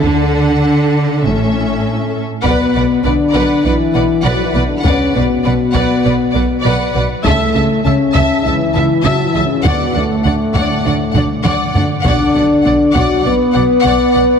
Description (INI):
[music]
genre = cinematic, epic orchestral film score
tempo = 100 BPM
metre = 4/4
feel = straight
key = B minor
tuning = A4 = 440 Hz
[part]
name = warm symphonic violin section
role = melody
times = 0.0-14.2 s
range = E5 to A5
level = -26 LUFS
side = left 3 dB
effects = none
[part]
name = rich symphonic violin section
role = second line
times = 0.0-14.2 s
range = A4 to F#5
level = -22 LUFS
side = left 3 dB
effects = none
[part]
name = warm symphonic viola section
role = accompaniment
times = 0.0-14.2 s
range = C#4 to E5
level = -21 LUFS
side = right 1 dB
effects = none
[part]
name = rich symphonic cello section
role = bass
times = 0.0-14.2 s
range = A2 to D3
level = -19 LUFS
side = right 2 dB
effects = none
[part]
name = rich symphonic double bass section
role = bass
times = 0.0-14.2 s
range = A1 to D2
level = -20 LUFS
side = right 3 dB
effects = none
[part]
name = clear trombone section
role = sustained chords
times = 2.4-14.4 s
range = A2 to B3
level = -21 LUFS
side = right 2 dB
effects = none
[part]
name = mellow French horn section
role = sustained chords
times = 2.4-14.4 s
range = A3 to B4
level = -15 LUFS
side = left 4 dB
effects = none
[part]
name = taiko ensemble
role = drums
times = 2.4-13.5 s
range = none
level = -20 LUFS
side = equal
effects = none
[sound]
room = wet scoring stage reverb, RT60 2.2 s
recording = heavily compressed radio sound, multiband compression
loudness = -11 LUFS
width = side -6 dB against mid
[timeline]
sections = 0.0-2.4 A section; 2.4-14.4 B section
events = build-up 0.0-2.4; drum fill 11.1-12.0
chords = 0.0 D; 1.2 A; 2.4 Bm; 7.2 A/C#; 9.6 D; 12.0 Bm